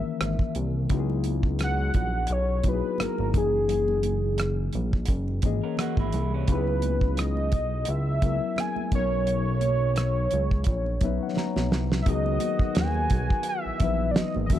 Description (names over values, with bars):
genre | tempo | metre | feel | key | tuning
R&B, neo-soul | 86 BPM | 4/4 | swing 55% on 16ths | C# dorian | A4 = 440 Hz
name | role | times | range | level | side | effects
warm velvety synth lead | melody | 0.0-14.6 s | G#4 to G#5 | -29 LUFS | right 1 dB | chorus
reed electric piano | accompaniment | 0.0-14.6 s | D#3 to A#5 | -31 LUFS | left 10 dB | none
fat analog bass | bass | 0.0-14.6 s | F#1 to D#2 | -27 LUFS | equal | none
damped 70s drum kit | drums | 0.2-14.6 s | hi-hat, kick drum, rim click, snare drum | -26 LUFS | right 1 dB | none
congas | percussion | 0.9-14.6 s | none | -38 LUFS | right 15 dB | none
electric guitar through a small old amp | second line | 5.6-6.7 s | E3 to A#4 | -36 LUFS | right 7 dB | spring reverb
warm horn section | stabs | 12.1-14.6 s | D#3 to G#4 | -38 LUFS | right 4 dB | none
room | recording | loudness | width
studio reverb | dark, warm production | -23 LUFS | side -12 dB against mid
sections
0.0-12.1 A section; 12.1-14.6 B section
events
reed electric piano fill 10.7-12.1; drum fill 11.4-12.1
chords
0.0 F#13 (rootless); 0.9 C#m11; 3.3 F#13; 6.5 C#m11; 8.9 Bmaj9; 12.1 C#m11